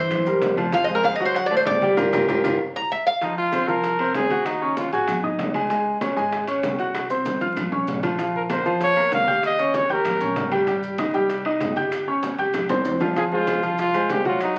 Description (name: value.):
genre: latin, salsa.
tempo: 193 BPM.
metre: 4/4.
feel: straight.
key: F minor.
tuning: A4 = 440 Hz.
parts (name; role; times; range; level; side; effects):
Cuban tres; melody; 0.0-3.2 s; Bb4 to Bb5; -24 LUFS; equal; none.
clear grand piano; accompaniment; 0.0-14.6 s; E3 to Ab6; -25 LUFS; equal; none.
upright bass; bass; 0.0-14.6 s; G1 to G2; -40 LUFS; equal; none.
bongos; percussion; 0.1-14.6 s; none; -36 LUFS; equal; none.
claves; percussion; 0.1-14.6 s; none; -40 LUFS; equal; none.
congas; percussion; 0.1-14.6 s; none; -36 LUFS; equal; none.
maracas; percussion; 0.1-14.6 s; none; -51 LUFS; equal; none.
timbales; percussion; 0.1-14.6 s; none; -37 LUFS; equal; none.
warm trumpet; melody; 3.2-5.2, 8.4-10.5, 13.2-14.6 s; Eb4 to F5; -24 LUFS; equal; none.
room: wet large studio reverb, RT60 0.9 s.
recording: very old 78 rpm record, vinyl crackle.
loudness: -22 LUFS.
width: mono.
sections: 0.0-3.2 A section; 3.2-13.2 B section; 13.2-14.6 C section.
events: Cuban tres solo 0.0-3.2; band accent 2.0-3.2; drum fill 2.6-3.2, 6.9-8.2, 12.2-13.2.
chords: 0.0 C7; 0.7 Fm; 1.4 D7; 2.0 Gm7; 2.6 N.C.; 3.2 Fm7; 4.5 Ebm7; 5.1 Ab; 5.7 Db5; 6.9 Csus4; 7.6 Bbm; 9.4 Eb7; 10.7 Abmaj7; 11.9 Gsus4; 12.5 C; 13.2 Fm.